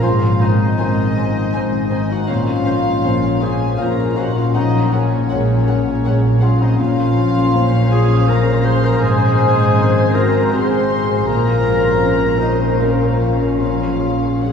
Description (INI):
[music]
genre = cinematic, emotional film score for orchestra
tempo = 80 BPM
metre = 3/4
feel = rubato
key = Bb minor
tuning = A4 = 441 Hz
[part]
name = warm symphonic violin section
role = melody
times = 0.0-14.5 s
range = C5 to Ab5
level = -30 LUFS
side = left 3 dB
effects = none
[part]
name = mellow clarinet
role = second line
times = 0.0-14.5 s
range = Db4 to C5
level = -21 LUFS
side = left 1 dB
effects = none
[part]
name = warm symphonic violin section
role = second line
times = 0.0-14.5 s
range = Db5 to C6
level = -25 LUFS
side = left 1 dB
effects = none
[part]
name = dark symphonic viola section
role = accompaniment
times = 0.0-14.5 s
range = C4 to C5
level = -25 LUFS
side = equal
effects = none
[part]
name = felt-muted upright piano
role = accompaniment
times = 0.0-14.5 s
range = Ab2 to Db5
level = -24 LUFS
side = left 2 dB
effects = none
[part]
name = warm French horn section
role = sustained chords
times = 0.0-14.5 s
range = Db3 to C5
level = -23 LUFS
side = left 2 dB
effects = none
[part]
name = concert harp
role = arpeggios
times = 0.0-14.5 s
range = Ab2 to C6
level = -25 LUFS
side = left 4 dB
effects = none
[part]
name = dark studio double bass section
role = bass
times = 0.0-14.5 s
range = Ab1 to Bb1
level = -21 LUFS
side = equal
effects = none
[part]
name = warm studio cello section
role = bass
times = 0.0-14.5 s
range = Ab2 to Bb2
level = -20 LUFS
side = equal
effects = none
[sound]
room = wet cathedral reverb, RT60 6.4 s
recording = heard from further back in the room, studio ambience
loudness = -13 LUFS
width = side -6 dB against mid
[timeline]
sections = 0.0-14.5 A section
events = none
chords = 0.0 Ab; 2.3 Bbmadd9; 4.6 Gbadd9/Bb; 6.8 Bbmadd9; 9.0 Ab; 11.3 Bbmadd9; 13.6 Gbadd9/Bb